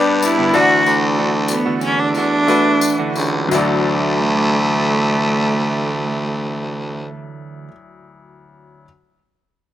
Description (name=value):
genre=piano-driven pop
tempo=85-98 BPM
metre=4/4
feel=straight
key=D major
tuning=A4 = 440 Hz
part: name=bright upright piano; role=accompaniment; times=0.0-8.9 s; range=D2 to D5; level=-21 LUFS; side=left 4 dB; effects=slapback echo
part: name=direct-recorded clean electric guitar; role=riff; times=0.0-7.8 s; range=G2 to G4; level=-24 LUFS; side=right 7 dB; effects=slapback echo
part: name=growling baritone saxophone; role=bass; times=0.0-7.1 s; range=C#2 to G2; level=-20 LUFS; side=equal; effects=none
part: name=clear cello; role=melody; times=0.2-7.1 s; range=A3 to F#4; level=-18 LUFS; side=equal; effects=slapback echo
part: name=tambourine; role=percussion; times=0.2-3.8 s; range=none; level=-28 LUFS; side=left 6 dB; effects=none
room=little or no reverb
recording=recorded outdoors, with no room sound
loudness=-14 LUFS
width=side -12 dB against mid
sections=0.0-3.5 A section; 3.5-6.3 B section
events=slowing down 0.0-3.5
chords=0.0 G; 0.5 Dadd9